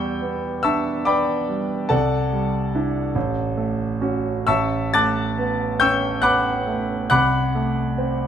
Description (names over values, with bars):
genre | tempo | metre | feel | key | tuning
classical, impressionist solo piano | 42-50 BPM (dotted quarters) | 6/8 | rubato | unclear | A4 = 440 Hz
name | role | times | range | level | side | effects
clear concert grand piano | solo | 0.0-8.3 s | A1 to A6 | -19 LUFS | equal | none
room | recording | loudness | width
moderate large studio reverb, RT60 1.3 s | minimal, uncompressed stereo recording | -19 LUFS | side -9 dB against mid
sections
0.0-8.3 A section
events
none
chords
0.0 Em7; 1.9 C69; 3.2 A6; 4.5 A9; 7.1 Csus2